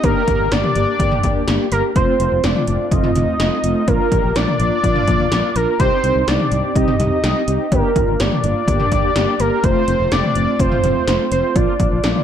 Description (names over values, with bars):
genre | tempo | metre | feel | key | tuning
synth-pop | 125 BPM | 4/4 | straight | unclear | A4 = 439 Hz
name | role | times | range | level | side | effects
fat analog lead | melody | 0.0-12.2 s | Bb4 to Eb5 | -19 LUFS | right 1 dB | chorus, digital delay
mellow synth brass | accompaniment | 0.0-12.2 s | A3 to G4 | -21 LUFS | left 1 dB | chorus
fretless electric bass | bass | 0.0-12.1 s | F1 to C2 | -21 LUFS | equal | none
80s electronic pad drums | drums | 0.0-12.2 s | hi-hat, kick drum, snare drum, toms | -20 LUFS | equal | gated reverb on snare and toms
room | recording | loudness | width
moderate echo chamber reverb, RT60 1.4 s | dark, warm production | -14 LUFS | side -9 dB against mid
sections
0.0-12.2 A section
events
none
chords
0.0 Gm; 2.0 F; 3.9 Bb; 5.8 Cm; 7.7 Gm; 9.6 F; 11.6 Bb